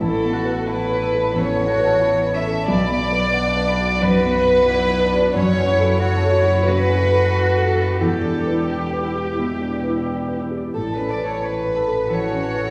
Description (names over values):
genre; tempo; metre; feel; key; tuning
neoclassical piano and strings; 90 BPM; 4/4; rubato; unclear; A4 = 442 Hz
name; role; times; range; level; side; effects
warm chamber violin section; melody; 0.0-12.7 s; G4 to E5; -22 LUFS; equal; none
dark cello; second line; 0.0-12.7 s; B3 to G4; -30 LUFS; equal; none
warm concert grand piano; accompaniment; 0.0-12.7 s; A1 to A5; -25 LUFS; equal; none
concert harp; arpeggios; 0.0-12.7 s; E4 to B5; -31 LUFS; equal; none
dark double bass; bass; 0.0-12.7 s; E1 to B1; -27 LUFS; equal; none
room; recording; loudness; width
wet concert hall reverb, RT60 1.8 s; recorded in a church or concert hall, studio ambience; -19 LUFS; mono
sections
0.0-12.7 A section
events
none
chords
0.0 Aadd9; 2.7 Bm; 5.3 F#m; 8.0 Em7; 10.7 Aadd9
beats
| 0.01 0.69 1.36 2.02 | 2.69 3.35 4.02 4.68 | 5.34 6.00 6.66 7.33 | 8.00 8.69 9.37 10.06 | 10.75 11.42 12.09